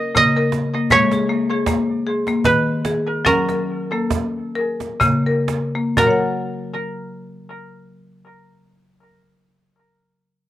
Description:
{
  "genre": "world meditative, meditative tuned percussion",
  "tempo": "60-79 BPM",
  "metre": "3/4",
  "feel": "swing 56% on 16ths",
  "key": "F# major pentatonic",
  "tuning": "A4 = 440 Hz",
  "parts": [
    { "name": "koto", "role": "melody", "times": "0.0-9.5 s", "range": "A#4 to D#5", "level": "-20 LUFS", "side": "right 2 dB", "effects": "cassette tape, plate reverb, analog delay" },
    { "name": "marimba with hard mallets", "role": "arpeggios", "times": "0.0-9.6 s", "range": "C#3 to F#5", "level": "-19 LUFS", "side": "left 2 dB", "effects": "cassette tape, plate reverb" },
    { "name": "cajon", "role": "percussion", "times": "0.2-6.4 s", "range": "none", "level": "-25 LUFS", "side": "right 4 dB", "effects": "none" }
  ],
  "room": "wet booth ambience, RT60 0.2 s",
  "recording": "home recording on cassette",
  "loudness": "-16 LUFS",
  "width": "side -13 dB against mid",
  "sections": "0.0-6.0 A section; 6.0-9.0 B section",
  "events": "slowing down 0.9-6.0",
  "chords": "0.0 F# (rootless); 0.9 G#m; 3.3 F#"
}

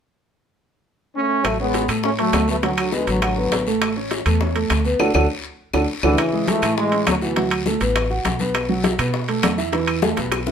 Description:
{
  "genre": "latin, salsa",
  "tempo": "203 BPM",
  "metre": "4/4",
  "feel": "straight",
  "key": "A major",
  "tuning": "A4 = 440 Hz",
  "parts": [
    { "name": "warm trombone section", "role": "melody", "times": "1.2-3.6, 6.0-7.5 s", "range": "B2 to C#4", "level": "-21 LUFS", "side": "equal", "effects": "none" },
    { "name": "upright bass", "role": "bass", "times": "1.4-10.5 s", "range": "A1 to B2", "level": "-25 LUFS", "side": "equal", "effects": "none" },
    { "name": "bongos", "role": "percussion", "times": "1.4-10.5 s", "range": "none", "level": "-28 LUFS", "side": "left 7 dB", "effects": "none" },
    { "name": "claves", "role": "percussion", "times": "1.4-10.5 s", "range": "none", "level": "-30 LUFS", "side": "left 4 dB", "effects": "none" },
    { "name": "guiro", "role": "percussion", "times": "1.4-10.5 s", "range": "none", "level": "-32 LUFS", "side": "left 5 dB", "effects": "none" },
    { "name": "timbales", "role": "percussion", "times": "1.4-10.5 s", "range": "none", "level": "-26 LUFS", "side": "right 3 dB", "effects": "none" },
    { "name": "warm upright piano", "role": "accompaniment", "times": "1.6-10.5 s", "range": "E3 to F#5", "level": "-22 LUFS", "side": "right 2 dB", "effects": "none" },
    { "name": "congas", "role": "percussion", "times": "6.2-10.5 s", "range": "none", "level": "-27 LUFS", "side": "left 3 dB", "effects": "none" }
  ],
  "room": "light reverb",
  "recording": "minimal, uncompressed stereo recording",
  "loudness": "-18 LUFS",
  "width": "side -7 dB against mid",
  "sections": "0.3-1.4 A section; 1.4-6.2 B section; 6.2-10.5 C section",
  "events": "band accent 5.0-6.2; drum fill 5.4-6.2, 10.0-10.5",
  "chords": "0.3 N.C.; 1.4 A6; 2.6 D6; 3.8 A; 5.0 D; 6.2 Amaj7; 7.4 D6; 8.5 B5; 9.7 Esus4"
}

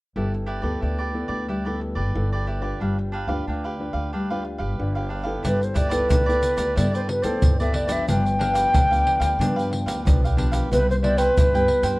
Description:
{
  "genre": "samba and choro",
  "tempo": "91 BPM",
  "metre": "4/4",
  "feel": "straight",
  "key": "G major",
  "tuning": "A4 = 440 Hz",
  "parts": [
    { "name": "cavaquinho", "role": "accompaniment", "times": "0.2-12.0 s", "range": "D4 to G5", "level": "-30 LUFS", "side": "right 3 dB", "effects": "none" },
    { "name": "nylon-string guitar", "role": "accompaniment", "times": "0.2-12.0 s", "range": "G2 to B4", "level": "-28 LUFS", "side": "left 1 dB", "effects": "none" },
    { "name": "upright bass", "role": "bass", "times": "0.2-12.0 s", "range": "G1 to G2", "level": "-26 LUFS", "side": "equal", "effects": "none" },
    { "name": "egg shaker, surdo and pandeiro", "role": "percussion", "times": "5.4-12.0 s", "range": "none", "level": "-23 LUFS", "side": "equal", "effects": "none" },
    { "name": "hollow wooden flute", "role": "melody", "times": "5.5-12.0 s", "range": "B4 to G5", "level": "-22 LUFS", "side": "equal", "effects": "none" }
  ],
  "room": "moderate studio reverb, RT60 0.8 s",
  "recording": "worn, warbling old tape, cassette tape, warbly pitch drift",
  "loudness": "-20 LUFS",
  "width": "side -21 dB against mid",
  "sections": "0.2-5.5 A section; 5.5-12.0 B section",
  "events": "none",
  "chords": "0.2 G69; 8.1 G7; 10.7 Cmaj7"
}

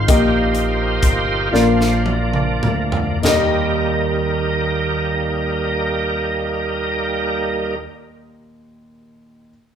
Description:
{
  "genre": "slow gospel",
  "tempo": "32-45 BPM (dotted quarters)",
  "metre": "6/8",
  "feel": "straight",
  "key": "Eb major",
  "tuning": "A4 = 439 Hz",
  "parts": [
    { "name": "dark upright piano", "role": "accompaniment", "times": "0.0-9.5 s", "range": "Eb2 to Eb5", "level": "-20 LUFS", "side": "left 2 dB", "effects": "none" },
    { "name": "bright tonewheel organ", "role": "sustained chords", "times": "0.0-7.8 s", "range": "F3 to C5", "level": "-20 LUFS", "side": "right 2 dB", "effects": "fast rotary speaker, overdrive, chorus vibrato" },
    { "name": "modern bright fingered electric bass", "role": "bass", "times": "0.0-7.9 s", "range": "G1 to Eb2", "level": "-24 LUFS", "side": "right 1 dB", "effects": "none" },
    { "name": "crisp fusion drum kit", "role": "drums", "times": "0.1-3.5 s", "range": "hi-hat, kick drum, snare drum, splash cymbal, toms", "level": "-20 LUFS", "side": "equal", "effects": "none" }
  ],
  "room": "moderate large studio reverb, RT60 1.3 s",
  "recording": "band playing live in one room",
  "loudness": "-16 LUFS",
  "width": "side -8 dB against mid",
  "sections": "0.0-3.2 A section; 3.2-7.0 B section",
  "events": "slowing down 0.0-3.2; tonewheel organ solo 0.0-3.2; drum fill 1.5-3.2",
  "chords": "0.1 Eb/Bb; 1.5 Bb; 3.2 Eb"
}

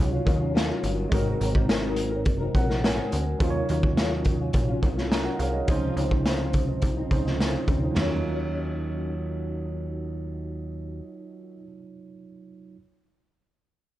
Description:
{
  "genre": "indie pop, bedroom pop",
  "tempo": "105 BPM",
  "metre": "4/4",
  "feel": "straight",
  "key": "Eb dorian",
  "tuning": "A4 = 443 Hz",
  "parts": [
    { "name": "barky tine electric piano", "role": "accompaniment", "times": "0.0-12.8 s", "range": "F3 to Bb5", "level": "-33 LUFS", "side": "right 5 dB", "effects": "overdrive" },
    { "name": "flamenco guitar", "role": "accompaniment", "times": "0.0-11.7 s", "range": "Ab2 to Bb4", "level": "-31 LUFS", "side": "left 3 dB", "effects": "ensemble chorus, warbly pitch drift" },
    { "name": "plucky analog bass", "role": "bass", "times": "0.0-11.0 s", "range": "Gb1 to Eb2", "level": "-29 LUFS", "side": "equal", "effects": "none" },
    { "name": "raw garage drum kit", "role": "drums", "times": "0.3-8.1 s", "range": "hi-hat, kick drum, ride cymbal, snare drum, toms", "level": "-25 LUFS", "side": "equal", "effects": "none" }
  ],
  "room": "light reverb",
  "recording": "dark, warm production",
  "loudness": "-23 LUFS",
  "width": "side -14 dB against mid",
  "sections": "0.0-8.0 A section; 8.0-10.3 B section",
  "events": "tine electric piano fill 2.3-3.4",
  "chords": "0.0 Ebm9; 1.1 Ab9; 3.4 Ebm9; 5.7 Dbmaj9; 8.0 Ebm9"
}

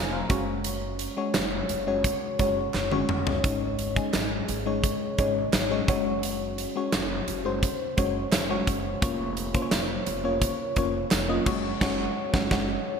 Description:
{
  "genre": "1980s-style pop",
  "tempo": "86 BPM",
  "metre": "4/4",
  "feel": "straight",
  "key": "unclear",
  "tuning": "A4 = 440 Hz",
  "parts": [
    { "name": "FM electric piano with auto-pan", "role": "accompaniment", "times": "0.0-13.0 s", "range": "Ab2 to Bb5", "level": "-27 LUFS", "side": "left 2 dB", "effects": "phaser" },
    { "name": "upright bass", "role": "bass", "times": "0.0-12.7 s", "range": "F1 to Ab1", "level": "-35 LUFS", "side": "equal", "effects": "none" },
    { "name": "huge arena drum kit", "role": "drums", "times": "0.3-12.7 s", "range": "crash cymbal, hi-hat, kick drum, snare drum, tambourine, toms", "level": "-28 LUFS", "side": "right 1 dB", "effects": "gated reverb" },
    { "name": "group handclap", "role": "percussion", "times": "1.3-11.3 s", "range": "none", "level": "barely audible", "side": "none", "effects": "none" }
  ],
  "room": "wet plate reverb, RT60 3.6 s",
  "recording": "bright 1980s-style digital production",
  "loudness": "-24 LUFS",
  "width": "side -6 dB against mid",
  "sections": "0.0-13.0 A section",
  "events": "drum fill 2.7-3.4; band accent 11.8-13.0",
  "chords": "0.3 Gbsus2; 3.4 Absus4; 5.9 Gbsus2; 9.0 Bbm/F; 11.5 Gbsus2"
}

